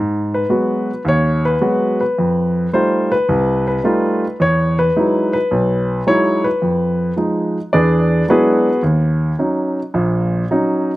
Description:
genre	jazz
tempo	108 BPM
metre	4/4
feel	swing 69% on 8ths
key	G# minor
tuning	A4 = 440 Hz
part	warm concert grand piano	solo	0.0-10.9 s	A#1 to D5	-14 LUFS	equal	none
room	little or no reverb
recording	recorded outdoors, with no room sound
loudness	-14 LUFS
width	side -17 dB against mid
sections	0.0-11.0 A section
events	grand piano solo 0.0-11.0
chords	0.0 G#m7; 2.2 F9; 4.4 Emaj9; 6.6 Fm7b5; 7.7 E9; 8.8 D#m7

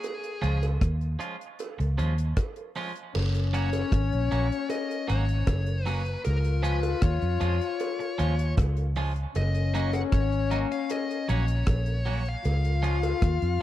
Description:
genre	roots reggae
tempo	77 BPM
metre	4/4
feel	straight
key	F# major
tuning	A4 = 441 Hz
part	high-gain lead guitar	melody	0.0-13.6 s	G#4 to F#5	-35 LUFS	left 1 dB	distortion, dub echo
part	deep reggae drum kit	drums	0.0-13.6 s	crash cymbal, hi-hat, kick drum, rim click	-26 LUFS	equal	none
part	cowbell and jawbone-type rattle	percussion	0.0-13.2 s	none	-38 LUFS	right 6 dB	none
part	twangy electric guitar	accompaniment	0.4-13.0 s	E#3 to F#4	-36 LUFS	right 4 dB	spring reverb, dub echo
part	vintage muted fingered electric bass	bass	0.4-13.6 s	F#1 to E#2	-26 LUFS	equal	none
part	clear trombone	second line	3.1-13.6 s	C#4 to E#4	-31 LUFS	left 10 dB	dub echo
room	little or no reverb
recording	dry, close 1970s-style studio recording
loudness	-24 LUFS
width	side -13 dB against mid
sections	0.0-3.1 A section; 3.1-13.6 B section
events	none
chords	0.0 C#; 3.1 F#; 6.3 C#; 9.3 F#; 12.4 C#

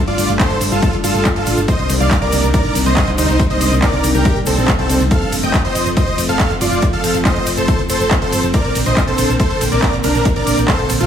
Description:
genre	uplifting trance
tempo	140 BPM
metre	4/4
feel	straight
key	unclear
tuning	A4 = 440 Hz
part	lush unison pad	sustained chords	0.0-11.1 s	C3 to Eb4	-20 LUFS	equal	chorus, sidechain pumping
part	big supersaw lead	melody	0.1-11.1 s	C4 to G5	-18 LUFS	equal	sidechain pumping, digital delay
part	solid FM bass	bass	0.1-11.1 s	Eb1 to D2	-20 LUFS	equal	tube saturation, sidechain pumping
part	techno drum kit	drums	0.1-11.1 s	handclaps, hi-hat, ride cymbal	-22 LUFS	right 1 dB	none
part	egg shaker	percussion	0.2-11.1 s	none	-30 LUFS	left 4 dB	none
part	electronic kick drum	drums	0.4-10.8 s	none	-18 LUFS	equal	none
room	light reverb, digital ambience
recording	studio ambience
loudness	-13 LUFS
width	side -9 dB against mid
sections	0.0-11.1 A section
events	none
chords	0.0 Gsus2; 1.7 Cm7; 5.1 F; 8.5 Bbadd9

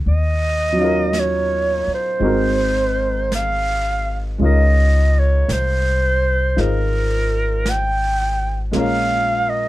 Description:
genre	jazz ballad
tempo	55 BPM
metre	4/4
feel	swing 69% on 8ths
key	unclear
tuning	A4 = 440 Hz
part	warm upright piano	accompaniment	0.0-9.7 s	Gb3 to C5	-23 LUFS	equal	none
part	upright bass	bass	0.0-9.7 s	Ab1 to Eb2	-19 LUFS	equal	none
part	jazz brush drum kit	drums	0.0-9.7 s	brushed snare drum, hi-hat, snare drum	-32 LUFS	right 1 dB	none
part	breathy clarinet	melody	0.1-9.7 s	Bb4 to G5	-20 LUFS	right 1 dB	none
room	light reverb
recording	dark, warm production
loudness	-16 LUFS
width	side -16 dB against mid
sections	0.0-9.7 A section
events	none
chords	0.0 Ebm7; 2.2 Ab9; 4.4 Db69; 8.7 Bbm7

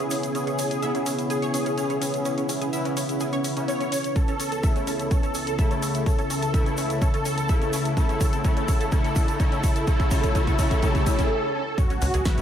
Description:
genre	melodic techno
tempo	126 BPM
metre	4/4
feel	straight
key	unclear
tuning	A4 = 440 Hz
part	wide unison lead	melody	0.0-12.4 s	F#4 to C#5	-29 LUFS	equal	ensemble chorus, sidechain pumping, digital delay
part	dark analog pad	sustained chords	0.0-12.4 s	C#3 to C#6	-33 LUFS	left 2 dB	chorus, sidechain pumping
part	analog pluck	arpeggios	0.0-12.4 s	C#4 to E5	-33 LUFS	equal	ensemble chorus, sidechain pumping, ping-pong delay
part	analog synth brass	stabs	0.0-12.4 s	C#3 to E4	-30 LUFS	left 2 dB	chorus, sidechain pumping, ping-pong delay
part	analog drone	drone	0.0-11.3 s	C#3 to B3	-37 LUFS	equal	none
part	house drum kit	drums	0.0-12.4 s	hi-hat, snare drum	-35 LUFS	left 2 dB	sidechain pumping on hats, studio ambience
part	egg shaker	percussion	0.0-12.4 s	none	-39 LUFS	right 2 dB	none
part	granular cloud pad	texture	0.0-11.3 s	C#4 to B5	-33 LUFS	right 2 dB	built-in reverb, sidechain pumping
part	electronic kick drum	drums	4.2-12.4 s	none	-22 LUFS	equal	studio ambience
part	riser, swell and impact	sound effects	6.3-12.4 s	none	-35 LUFS	right 1 dB	none
part	tight sequencer bass	bass	12.0-12.4 s	C#2	-24 LUFS	equal	tube saturation, sidechain pumping
room	moderate digital room reverb, RT60 1.1 s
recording	none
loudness	-21 LUFS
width	side -9 dB against mid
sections	0.0-11.8 A section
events	build-up 0.0-11.8; drum fill 4.2-11.3; riser 6.3-11.3; swell 10.8-11.8; break 11.3-11.8; impact 11.8-12.4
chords	0.0 C#m7; 4.2 A/C#; 11.8 C#m7

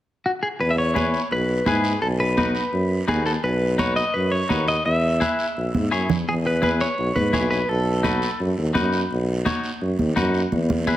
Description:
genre	latin, cumbia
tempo	169 BPM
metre	4/4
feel	straight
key	E major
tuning	A4 = 440 Hz
part	clean electric guitar	melody	0.3-8.4 s	F#4 to E5	-24 LUFS	equal	spring reverb, slapback echo
part	warm tuba	bass	0.6-11.0 s	B1-20c to G#2	-23 LUFS	equal	none
part	guiro	percussion	0.6-11.0 s	none	-36 LUFS	right 4 dB	none
part	clean electric guitar	accompaniment	0.9-11.0 s	D#4 to C#5	-27 LUFS	left 4 dB	spring reverb
part	congas	percussion	1.0-11.0 s	none	-26 LUFS	right 1 dB	none
room	light reverb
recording	close, detailed microphones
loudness	-19 LUFS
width	side -13 dB against mid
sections	0.6-6.3 A section; 6.3-11.0 B section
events	drum fill 5.7-6.3, 10.5-11.0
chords	0.0 N.C.; 0.6 E; 2.0 B; 4.9 E; 7.7 B7

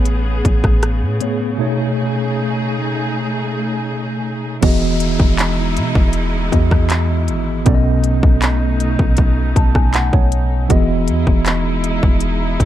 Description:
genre	contemporary R&B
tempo	79 BPM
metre	4/4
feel	straight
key	E major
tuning	A4 = 442 Hz
part	tine electric piano	accompaniment	0.0-12.7 s	A2 to A5	-19 LUFS	right 1 dB	medium stereo tremolo
part	clear studio string section	sustained chords	0.0-12.7 s	B2 to G#4	-24 LUFS	left 1 dB	none
part	warm 808-style bass	bass	0.0-12.7 s	E1 to B2	-18 LUFS	equal	none
part	trap drum kit	drums	0.1-12.7 s	crash cymbal, handclaps, hi-hat, kick drum, rim click	-15 LUFS	equal	none
part	downlifter	sound effects	4.6-10.7 s	none	-32 LUFS	left 2 dB	none
room	little or no reverb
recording	dark, warm production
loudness	-14 LUFS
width	side -12 dB against mid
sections	0.0-4.6 A section; 4.6-12.7 B section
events	break 1.6-4.6; tine electric piano fill 9.2-10.7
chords	0.0 Amaj9; 1.6 B13; 4.6 Emaj7; 7.7 B7; 10.7 Emaj7

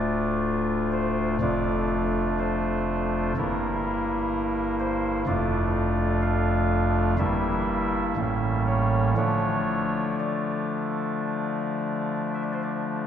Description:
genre	classical, chorale-style piece for pipe organ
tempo	58-64 BPM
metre	4/4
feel	rubato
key	D minor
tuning	A4 = 440 Hz
part	chamber organ, soft reed	solo	0.0-13.1 s	D1 to F5	-23 LUFS	equal	none
room	wet church reverb, RT60 3.5 s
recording	heard from further back in the room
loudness	-23 LUFS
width	side -9 dB against mid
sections	0.0-13.1 A section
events	none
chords	0.0 Dm; 1.4 Dm/F; 3.4 Edim/G; 5.3 Dm/F; 7.2 Edim/G; 8.2 A7b9; 9.2 Dm

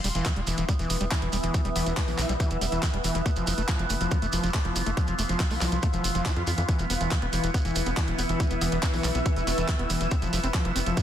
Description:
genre	psychedelic trance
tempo	140 BPM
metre	4/4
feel	straight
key	unclear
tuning	A4 = 440 Hz
part	overtone-sweeping drone	sustained chords	0.4-11.0 s	E3 to B3	-34 LUFS	equal	chorus, built-in reverb, phaser, sidechain pumping
part	overdriven acid bass	riff	0.0-11.0 s	E3 to F4	-31 LUFS	equal	distortion, auto-pan, sidechain pumping, tape echo
part	tight sequencer bass	bass	0.0-10.9 s	E1 to F2	-30 LUFS	equal	none
part	garage drum kit	drums	0.0-11.0 s	handclaps, hi-hat	-33 LUFS	equal	overdrive, studio reverb
part	shekere	percussion	0.0-11.0 s	none	-37 LUFS	right 5 dB	none
part	granular cloud pad	texture	0.0-11.0 s	E4 to E6	-34 LUFS	left 1 dB	built-in reverb, sidechain pumping
part	electronic kick drum	drums	0.3-11.0 s	none	-26 LUFS	equal	overdrive, studio reverb
part	metallic wobble bass	second line	1.8-2.5, 8.6-9.9 s	G3 to B3	-41 LUFS	left 3 dB	chorus, cassette tape, sidechain pumping, high-pass filter, digital delay
part	riser	sound effects	10.1-11.0 s	none	barely audible	none	none
room	light reverb, digital ambience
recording	dense, heavily limited modern master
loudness	-24 LUFS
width	side -10 dB against mid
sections	0.0-11.0 A section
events	none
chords	0.0 E5; 3.3 F5; 6.7 E5; 10.1 F5

